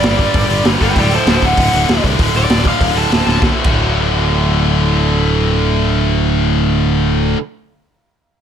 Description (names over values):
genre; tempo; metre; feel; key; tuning
punk rock; 195 BPM; 4/4; straight; D major; A4 = 440 Hz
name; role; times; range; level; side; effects
cranked stack guitar; melody; 0.0-3.4 s; B4 to A5; -17 LUFS; equal; overdrive
tight distorted guitar; riff; 0.0-7.4 s; D2 to F#4; -18 LUFS; left 14 dB; distortion
tight distorted guitar; riff; 0.0-7.4 s; D2 to G3; -19 LUFS; right 14 dB; distortion
modern bright picked electric bass; bass; 0.0-7.3 s; D1 to C2; -17 LUFS; equal; none
raw garage drum kit; drums; 0.0-3.7 s; crash cymbal, hi-hat, kick drum, snare drum; -16 LUFS; equal; none
room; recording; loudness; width
little or no reverb; none; -11 LUFS; side -8 dB against mid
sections
0.0-3.4 A section; 3.4-5.9 B section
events
overdriven electric guitar solo 0.0-3.4; drum fill 3.3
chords
0.0 G5; 1.0 D